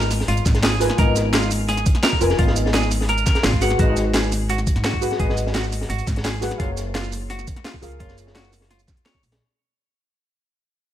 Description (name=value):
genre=liquid drum and bass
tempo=171 BPM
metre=4/4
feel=straight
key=G# dorian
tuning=A4 = 440 Hz
part: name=deep mellow chord stab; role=accompaniment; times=0.0-9.4 s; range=B3 to G#5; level=-25 LUFS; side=left 1 dB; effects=chorus, ping-pong delay
part: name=clean electric guitar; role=arpeggios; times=0.0-9.2 s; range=E#4 to F#5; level=-27 LUFS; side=right 1 dB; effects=wide subtle chorus, ping-pong delay
part: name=upright bass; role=bass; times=0.0-9.4 s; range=E#1 to G#2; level=-23 LUFS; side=equal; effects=none
part: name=crunchy breakbeat drum kit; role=drums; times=0.0-9.4 s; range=hi-hat, snare drum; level=-29 LUFS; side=equal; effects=high-pass filter on hats, studio reverb, high-pass filter on snare, high-pass filter on room
part: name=drum and bass drum kit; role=drums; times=0.0-9.4 s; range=hi-hat, shaker, snare drum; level=-25 LUFS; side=equal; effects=studio reverb
part: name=electronic kick drum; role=drums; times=0.5-9.2 s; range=none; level=-21 LUFS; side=equal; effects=studio reverb
room=light reverb, studio reverb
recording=none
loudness=-18 LUFS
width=side -11 dB against mid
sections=0.0-9.4 A section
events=drop 0.0-9.4; fade-out 3.8-9.4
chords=0.0 G#m69; 3.6 G#m7; 6.6 F#maj9